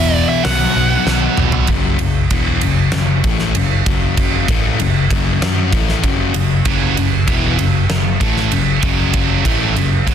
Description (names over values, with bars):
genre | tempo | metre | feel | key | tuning
hard rock | 97 BPM | 4/4 | straight | F# minor | A4 = 440 Hz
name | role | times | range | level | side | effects
dark smooth lead guitar | melody | 0.0-1.4 s | E5 to F#5 | -19 LUFS | right 1 dB | overdrive, tape echo
high-gain distorted guitar | riff | 0.0-1.7, 6.7-10.1 s | E2 to B3 | -19 LUFS | right 11 dB | distortion
sludgy distorted guitar | riff | 0.0-10.1 s | E2 to F#4 | -19 LUFS | left 10 dB | overdrive
picked electric bass | bass | 0.0-10.1 s | E1 to F#2 | -19 LUFS | equal | none
huge arena drum kit | drums | 0.4-10.1 s | hi-hat, kick drum, ride cymbal, snare drum, toms | -17 LUFS | right 1 dB | soft clipping on snare
room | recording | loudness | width
light reverb | dense, heavily limited modern master | -13 LUFS | side -8 dB against mid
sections
0.0-1.7 A section; 1.7-10.1 B section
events
drum fill 1.1-1.7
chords
0.4 B5; 1.7 F#m